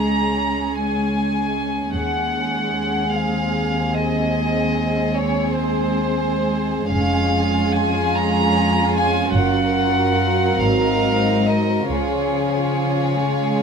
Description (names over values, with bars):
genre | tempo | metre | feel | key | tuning
classical, slow romantic movement for string orchestra | 42-51 BPM (dotted quarters) | 12/8 | rubato | Db major | A4 = 444 Hz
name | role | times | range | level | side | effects
warm chamber violin section | melody | 0.0-13.6 s | C5 to Bb5 | -23 LUFS | equal | none
warm chamber violin section | second line | 0.0-13.6 s | Eb4 to Bb4 | -24 LUFS | equal | none
warm chamber viola section | accompaniment | 0.0-13.6 s | F3 to Db4 | -23 LUFS | right 3 dB | none
warm chamber cello section | bass | 0.0-13.6 s | Db2 to Db3 | -24 LUFS | left 2 dB | none
dark chamber double bass section | bass | 1.9-12.8 s | F1 to Eb2 | -26 LUFS | right 1 dB | none
room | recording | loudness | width
light reverb | minimal, uncompressed stereo recording | -17 LUFS | side -6 dB against mid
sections
0.0-13.6 A section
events
none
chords
0.0 Db5; 1.9 Ab7/Eb; 6.9 Db/F; 9.3 Gbmaj7; 10.6 Ab7; 11.9 Db